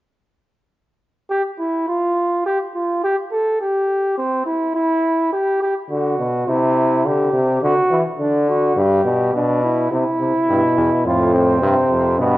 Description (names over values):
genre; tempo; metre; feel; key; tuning
classical, imitative canzona for brass ensemble; 104 BPM; 4/4; straight; C major; A4 = 439 Hz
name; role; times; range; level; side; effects
mellow flugelhorn; second line; 1.3-12.4 s; B3 to A4; -18 LUFS; right 1 dB; none
clear trombone; accompaniment; 5.9-12.4 s; G2 to E3; -18 LUFS; left 1 dB; none
bright bass trombone; bass; 10.5-12.4 s; E2 to G2; -19 LUFS; equal; none
room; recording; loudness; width
moderate recital hall reverb, RT60 1.8 s; worn, warbling old tape, cassette tape, warbly pitch drift, nothing above 7.5 kHz; -16 LUFS; side -16 dB against mid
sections
0.7-12.4 A section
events
none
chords
0.7 N.C.; 5.3 G; 6.5 C; 7.6 D; 8.8 G; 9.9 C; 11.1 F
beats
| 0.72 1.29 1.87 2.44 | 3.02 3.60 4.17 4.75 | 5.32 5.90 6.47 7.05 | 7.62 8.19 8.77 9.34 | 9.91 10.48 11.05 11.62 | 12.19